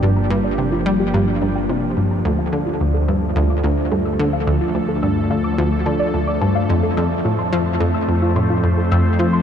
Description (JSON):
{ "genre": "ambient, sequencer-driven space music", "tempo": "108 BPM", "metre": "4/4", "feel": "straight", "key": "unclear", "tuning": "A4 = 440 Hz", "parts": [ { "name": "phased analog pad", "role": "sustained chords", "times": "0.0-9.4 s", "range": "F3 to D5", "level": "-22 LUFS", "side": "equal", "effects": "phaser, chorus" }, { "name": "soft round pluck", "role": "arpeggios", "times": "0.0-9.4 s", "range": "F4 to E6", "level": "-26 LUFS", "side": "moving between left 5 dB and right 3 dB", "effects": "chorus, auto-pan, tape echo" }, { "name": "analog pluck", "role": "riff", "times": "0.0-9.4 s", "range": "D2 to G3", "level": "-18 LUFS", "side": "equal", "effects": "chorus, tape echo" }, { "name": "analog drone", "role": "bass", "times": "0.0-9.4 s", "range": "G1 to F2", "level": "-26 LUFS", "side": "equal", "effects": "chorus" }, { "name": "wind-like tuned noise texture", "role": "texture", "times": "3.8-9.4 s", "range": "D4 to D5", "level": "-41 LUFS", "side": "right 1 dB", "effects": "none" } ], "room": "moderate huge ambient reverb, RT60 8.8 s", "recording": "dark, warm production, nothing above 10.7 kHz", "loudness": "-16 LUFS", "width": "side -8 dB against mid", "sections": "0.0-9.4 A section", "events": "filter sweep on synth arpeggio sound 0.0-9.4", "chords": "0.0 Gm7; 2.2 Dm; 6.7 F" }